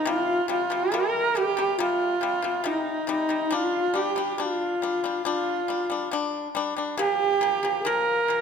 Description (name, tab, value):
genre	mongolian traditional, Mongolian folk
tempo	69 BPM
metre	4/4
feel	straight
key	C minor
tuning	A4 = 443 Hz
part	rich horsehead fiddle	melody	0.0-8.4 s	Eb4 to Bb4	-25 LUFS	right 5 dB	none
part	mellow hollow low xiao	second line	0.0-8.4 s	Eb4 to Bb4	-28 LUFS	left 4 dB	none
part	pipa	arpeggios	0.0-8.4 s	Bb2 to D4	-29 LUFS	left 6 dB	none
room	moderate scoring stage reverb, RT60 1.9 s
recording	none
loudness	-23 LUFS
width	side -6 dB against mid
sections	0.0-8.4 A section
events	none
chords	0.1 C5; 3.5 G5; 7.0 Bb5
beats	| 0.07 0.93 1.80 2.66 | 3.53 4.39 5.26 6.12 | 6.99 7.86